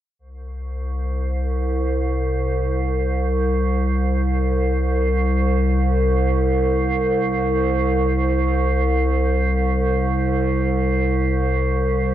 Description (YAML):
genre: world meditative, free-time meditation music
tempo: free time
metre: none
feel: none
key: unclear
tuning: A4 = 439 Hz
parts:
  - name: icy glass pad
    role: solo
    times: 0.4-12.1 s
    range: C2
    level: -18 LUFS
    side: equal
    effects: chorus, built-in reverb, diffuse ambient delay
room: wet small room reverb, RT60 0.6 s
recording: dark, warm production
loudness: -18 LUFS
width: side -12 dB against mid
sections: 0.2-12.1 A section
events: none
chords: none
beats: free time